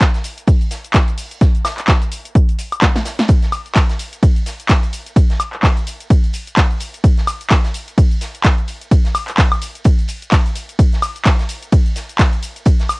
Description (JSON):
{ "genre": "house", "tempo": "128 BPM", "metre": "4/4", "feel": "swing 58% on 16ths", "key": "none", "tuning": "none", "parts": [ { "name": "big rock drum kit", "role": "drums", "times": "0.0-13.0 s", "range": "hi-hat, snare drum", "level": "-32 LUFS", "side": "right 1 dB", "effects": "sidechain pumping on hats, high-pass filter on hats, cassette tape, high-pass filter on snare, high-pass filter on room" }, { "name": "electronic kick drum", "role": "drums", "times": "0.0-12.8 s", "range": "none", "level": "-12 LUFS", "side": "equal", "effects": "overdrive, cassette tape" }, { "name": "punchy analog drum machine", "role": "drums", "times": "0.0-13.0 s", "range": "handclaps, hi-hat, ride cymbal, shaker, snare drum, woodblock", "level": "-20 LUFS", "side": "equal", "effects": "overdrive, cassette tape" } ], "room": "little or no reverb", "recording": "home recording on cassette", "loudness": "-13 LUFS", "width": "side -27 dB against mid", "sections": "0.0-13.0 A section", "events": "drum fill 2.8-3.3", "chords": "none" }